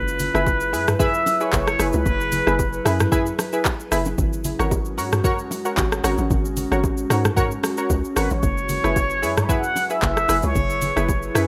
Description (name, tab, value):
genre	amapiano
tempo	113 BPM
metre	4/4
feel	swing 55% on 16ths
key	unclear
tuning	A4 = 440 Hz
part	trumpet with plunger mute	melody	0.0-3.0, 8.2-11.5 s	B4 to B5	-26 LUFS	equal	tape echo
part	glassy FM pad	sustained chords	0.0-11.5 s	F#3 to B4	-31 LUFS	equal	ensemble chorus, built-in reverb, sidechain pumping
part	hollow log drum bass	bass	0.0-11.5 s	F#1 to G#2	-27 LUFS	equal	none
part	smooth R&B drum kit	drums	0.1-11.5 s	handclaps, hi-hat, kick drum, rim click, shaker, toms	-26 LUFS	equal	none
part	congas and bongos	percussion	0.2-11.2 s	none	-34 LUFS	equal	none
part	punchy chord stab	stabs	0.3-11.5 s	E4 to C#5	-28 LUFS	equal	chorus, tape echo
room	light reverb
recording	rough home demo mix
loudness	-21 LUFS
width	mono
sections	0.0-11.5 A section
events	none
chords	0.0 F#9sus4; 4.2 G#9sus4; 8.4 F#9sus4